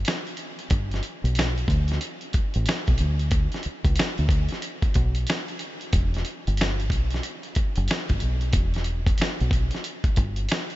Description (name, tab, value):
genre	R&B, neo-soul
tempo	92 BPM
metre	4/4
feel	swing 63% on 16ths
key	E dorian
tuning	A4 = 439 Hz
part	deep dub fingered electric bass	bass	0.0-10.5 s	E1 to D2	-24 LUFS	equal	none
part	dusty soul sampler-style drum kit	drums	0.0-10.8 s	finger snaps, hi-hat, kick drum, snare drum	-25 LUFS	equal	none
room	little or no reverb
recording	nothing above 7.7 kHz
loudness	-22 LUFS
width	side -16 dB against mid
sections	0.0-10.8 A section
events	none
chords	none